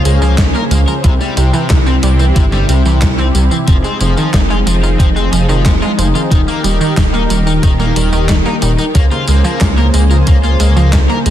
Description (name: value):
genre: synthwave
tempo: 91 BPM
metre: 4/4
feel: straight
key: F minor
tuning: A4 = 440 Hz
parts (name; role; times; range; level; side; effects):
- warm analog pad; sustained chords; 0.0-11.3 s; C3 to C5; -19 LUFS; equal; chorus, sidechain pumping
- analog pluck; arpeggios; 0.1-11.3 s; Eb3 to E4; -19 LUFS; right 3 dB; chorus, ping-pong delay
- overdriven semi-hollow guitar; riff; 0.1-11.3 s; C3 to Bb4; -22 LUFS; left 4 dB; wide subtle chorus, ping-pong delay
- dark detuned saw bass; bass; 0.1-11.3 s; Eb1 to Db2; -12 LUFS; equal; none
- gated 80s digital drum machine; drums; 0.1-11.3 s; handclaps, hi-hat, snare drum, tambourine; -20 LUFS; left 1 dB; gated reverb, gated reverb snare
- electronic kick drum; drums; 0.4-11.1 s; none; -12 LUFS; equal; none
room: light reverb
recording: dense, heavily limited modern master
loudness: -9 LUFS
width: side -11 dB against mid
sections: 0.0-11.3 A section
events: none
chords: 0.0 Bbm7/Db; 1.0 C; 3.7 Fm7; 6.3 Eb; 9.0 Bbm7/Db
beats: 0.38 | 1.04 1.70 2.36 3.02 | 3.68 4.34 5.00 5.66 | 6.31 6.97 7.63 8.29 | 8.95 9.61 10.27 10.93